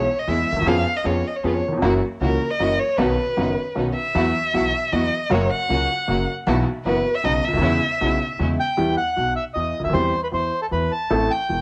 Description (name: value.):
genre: tango.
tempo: 155 BPM.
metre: 3/4.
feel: rubato.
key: E major.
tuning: A4 = 440 Hz.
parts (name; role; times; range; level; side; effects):
warm violin; second line; 0.0-8.4 s; A#4 to F#5; -25 LUFS; equal; cassette tape.
clear upright piano; accompaniment; 0.0-11.6 s; E1 to A4; -25 LUFS; equal; cassette tape.
clear studio string section; stabs; 0.0-8.6 s; G#3 to F#4; -32 LUFS; equal; cassette tape.
upright bass; bass; 0.0-11.6 s; E1 to E#2; -29 LUFS; equal; none.
bandoneon; melody; 8.6-11.6 s; A4 to A5; -25 LUFS; equal; cassette tape.
room: light reverb, small room ambience.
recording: home recording on cassette.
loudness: -21 LUFS.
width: mono.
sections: 0.0-8.8 A section; 8.8-11.6 B section.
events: violin solo 0.0-8.8.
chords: 0.0 E; 0.7 C#7/E#; 1.8 F#7; 3.0 Badd9; 4.1 Esus2; 5.3 F#; 6.5 Bsus4; 7.2 Badd9; 7.6 E6; 8.8 Em; 9.9 C/E; 11.1 Am.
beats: 0.28 | 0.67 1.05 1.44 | 1.83 2.21 2.60 | 2.98 3.37 3.76 | 4.14 4.53 4.92 | 5.30 5.69 6.08 | 6.46 6.85 7.23 | 7.62 8.01 8.39 | 8.78 9.17 9.56 | 9.95 10.34 10.72 | 11.11 11.50.